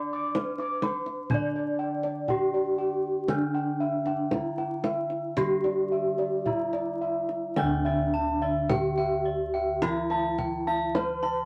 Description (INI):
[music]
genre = Javanese gamelan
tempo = 53-64 BPM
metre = 4/4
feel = straight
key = D slendro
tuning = A4 = 440 Hz
[part]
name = gamelan-type bronze metallophone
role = melody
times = 0.0-11.5 s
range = D4 to D5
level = -31 LUFS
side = equal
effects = none
[part]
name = gamelan-type bronze metallophone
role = accompaniment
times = 0.0-11.5 s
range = D3 to D4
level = -38 LUFS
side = equal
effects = none
[part]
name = gamelan-type bossed gongs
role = arpeggios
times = 0.0-11.5 s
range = D5 to D6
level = -33 LUFS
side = equal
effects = none
[part]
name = gamelan-type bossed gongs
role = bass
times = 0.0-11.5 s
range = D2 to D5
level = -40 LUFS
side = equal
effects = none
[part]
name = kendang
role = percussion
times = 0.3-11.4 s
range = none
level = -34 LUFS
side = equal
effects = none
[part]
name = gamelan-type bronze metallophone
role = arpeggios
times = 7.6-11.5 s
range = D5 to C6-45c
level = -36 LUFS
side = equal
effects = none
[sound]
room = wet studio reverb, RT60 0.6 s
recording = vinyl crackle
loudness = -28 LUFS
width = mono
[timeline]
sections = 0.0-7.6 A section; 7.6-11.5 B section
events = none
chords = none